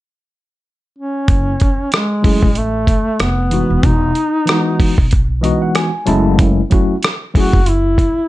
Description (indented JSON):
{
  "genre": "hip hop, jazz-hop",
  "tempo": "94 BPM",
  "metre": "4/4",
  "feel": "swing 58% on 16ths",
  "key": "F# dorian",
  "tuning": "A4 = 440 Hz",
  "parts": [
    { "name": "mellow duduk", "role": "melody", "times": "1.0-8.3 s", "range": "G#3 to F#4", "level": "-17 LUFS", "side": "equal", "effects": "none" },
    { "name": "upright bass", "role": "bass", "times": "1.3-8.1 s", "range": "E1 to B1", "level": "-18 LUFS", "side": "equal", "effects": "none" },
    { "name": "dusty soul sampler-style drum kit", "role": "drums", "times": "1.3-8.2 s", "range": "hi-hat, kick drum, rim click", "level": "-14 LUFS", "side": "equal", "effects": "vintage 12-bit sampler grit" },
    { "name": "tine electric piano", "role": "accompaniment", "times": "2.2-7.6 s", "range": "E3 to A5", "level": "-16 LUFS", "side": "left 1 dB", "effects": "medium stereo tremolo" }
  ],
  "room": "light reverb",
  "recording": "dark, warm production",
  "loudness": "-12 LUFS",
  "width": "side -16 dB against mid",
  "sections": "0.0-1.3 A section; 1.3-8.3 B section",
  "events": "tine electric piano fill 5.1-6.4",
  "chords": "0.0 N.C.; 1.3 F#m9; 3.2 Emaj9; 3.8 Emaj7; 6.1 F#m9"
}